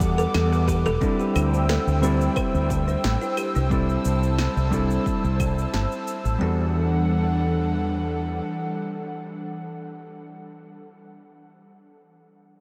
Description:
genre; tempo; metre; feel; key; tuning
sunset chillout; 89 BPM; 4/4; swing 53% on 16ths; E minor; A4 = 440 Hz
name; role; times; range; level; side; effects
hollow-body jazz guitar; accompaniment; 0.0-10.4 s; G3 to F#5; -30 LUFS; equal; low-pass filter, analog delay
airy breathy pad; sustained chords; 0.0-9.9 s; E3 to E6; -31 LUFS; equal; chorus
fretless electric bass; bass; 0.0-8.4 s; E1 to E2; -25 LUFS; equal; analog chorus
electronic cabasa, snare drum, claves and rim click; drums; 0.0-6.4 s; none; -36 LUFS; equal; overdrive, studio reverb
electronic kick drum; drums; 0.0-5.5 s; none; -30 LUFS; equal; overdrive, studio reverb
wind-like tuned noise texture; texture; 0.0-1.0 s; B4 to B5; -48 LUFS; equal; none
kalimba; arpeggios; 0.2-6.7 s; D4 to C5; -34 LUFS; equal; analog delay
room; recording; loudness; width
moderate huge ambient reverb, RT60 9.5 s; dreamy mix soaked in reverb; -23 LUFS; mono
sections
0.0-1.0 A section; 1.0-6.4 B section; 6.4-9.1 C section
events
drum fill 0.5-1.0; filter sweep on hollow-body jazz guitar 1.0-6.4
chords
0.0 Em11; 1.0 D9sus4; 3.7 C6; 6.4 Em11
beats
0.34 | 1.01 1.69 2.36 3.04 | 3.71 4.38 5.06 5.73 | 6.41 7.08 7.75 8.43

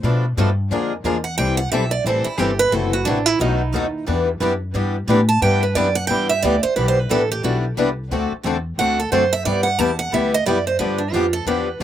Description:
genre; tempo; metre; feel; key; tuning
acoustic string swing (jazz manouche); 178 BPM; 4/4; swing 60% on 8ths; E minor; A4 = 440 Hz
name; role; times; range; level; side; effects
picked steel-string acoustic guitar; accompaniment; 0.0-11.8 s; B2 to A4; -23 LUFS; left 8 dB; none
picked swing-style acoustic guitar; accompaniment; 0.0-11.8 s; B2 to B4; -25 LUFS; right 4 dB; slapback echo
upright bass; bass; 0.0-11.8 s; F#1 to B2; -22 LUFS; left 1 dB; none
picked steel-string acoustic guitar; second line; 1.2-11.8 s; D4 to A5; -20 LUFS; right 5 dB; slapback echo
room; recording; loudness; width
little or no reverb; recorded outdoors, with no room sound; -17 LUFS; side -11 dB against mid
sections
0.0-6.8 A section; 6.8-11.8 A section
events
steel-string acoustic guitar solo 0.0-11.8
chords
0.0 Bm7b5; 0.7 A#7#11; 1.4 Am7; 2.7 F#m7b5; 3.4 B7; 4.1 Em7; 8.1 D7; 9.5 G6; 10.8 G7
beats
| 0.04 0.37 0.71 1.05 | 1.38 1.72 2.06 2.39 | 2.73 3.07 3.40 3.74 | 4.08 4.41 4.75 5.08 | 5.42 5.76 6.09 6.43 | 6.76 7.10 7.44 7.77 | 8.11 8.44 8.78 9.12 | 9.45 9.79 10.12 10.46 | 10.80 11.13 11.47 11.80

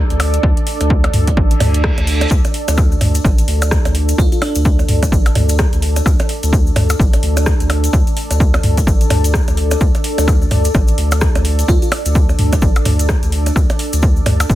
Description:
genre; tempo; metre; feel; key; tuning
minimal techno; 128 BPM; 4/4; swing 60% on 16ths; unclear; A4 = 441 Hz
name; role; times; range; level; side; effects
saturated sub bass; bass; 0.0-14.6 s; A1 to D2; -16 LUFS; equal; tube saturation, sidechain pumping
deep dark ambient pad; texture; 0.0-14.6 s; D4 to D5; -22 LUFS; right 1 dB; chorus, built-in reverb, sidechain pumping
garage drum kit; drums; 0.1-14.5 s; hi-hat, rim click; -24 LUFS; equal; none
electronic percussion blips and toms; percussion; 0.2-14.5 s; none; -19 LUFS; equal; none
electronic kick drum; drums; 0.4-14.6 s; none; -14 LUFS; equal; none
reverse cymbal; sound effects; 1.6-2.3 s; none; -25 LUFS; right 3 dB; none
tube shaker; percussion; 2.3-14.6 s; none; -29 LUFS; left 3 dB; none
bell-like FM electric piano; melody; 4.2-5.1, 11.7-11.9 s; D4 to F4; -22 LUFS; right 2 dB; chorus, tape echo
room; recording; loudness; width
little or no reverb; none; -12 LUFS; side -14 dB against mid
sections
0.0-14.6 A section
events
reverse cymbal 1.6-2.3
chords
0.0 D5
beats
| 0.43 0.90 1.37 1.84 | 2.31 2.78 3.25 3.71 | 4.18 4.65 5.12 5.59 | 6.06 6.53 7.00 7.46 | 7.93 8.40 8.87 9.34 | 9.81 10.28 10.74 11.21 | 11.68 12.15 12.62 13.09 | 13.56 14.03 14.49

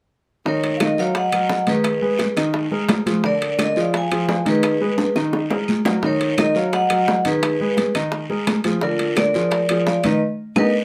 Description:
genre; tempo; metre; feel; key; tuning
latin, salsa; 172 BPM; 4/4; straight; Eb minor; A4 = 437 Hz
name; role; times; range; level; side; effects
vibraphone with medium hard mallets; melody; 0.5-10.7 s; F4 to Ab5; -23 LUFS; equal; none
warm grand piano; accompaniment; 0.5-10.7 s; D3 to Eb5; -24 LUFS; equal; none
bongos; percussion; 0.5-10.6 s; none; -30 LUFS; equal; none
congas; percussion; 0.5-10.6 s; none; -27 LUFS; equal; none
guiro; percussion; 0.5-10.6 s; none; -36 LUFS; equal; none
timbales; percussion; 0.6-10.6 s; none; -29 LUFS; equal; none
claves; percussion; 0.8-10.6 s; none; -32 LUFS; equal; none
room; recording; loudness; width
moderate studio reverb, RT60 0.5 s; close, detailed microphones; -20 LUFS; mono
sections
0.5-10.8 A section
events
drum fill 5.0-6.0, 10.2-10.8; band accent 10.2-10.8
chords
0.5 Ebm7; 1.9 Abmadd9; 3.2 Bb7; 4.6 Abmadd9; 6.0 Ebm7; 7.4 Abmadd9; 8.8 Bb7; 10.2 Abm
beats
| 0.46 0.81 1.16 1.50 | 1.85 2.20 2.55 2.90 | 3.24 3.59 3.94 4.29 | 4.64 4.99 5.33 5.68 | 6.03 6.38 6.73 7.08 | 7.42 7.77 8.12 8.47 | 8.82 9.17 9.52 9.87 | 10.21 10.56

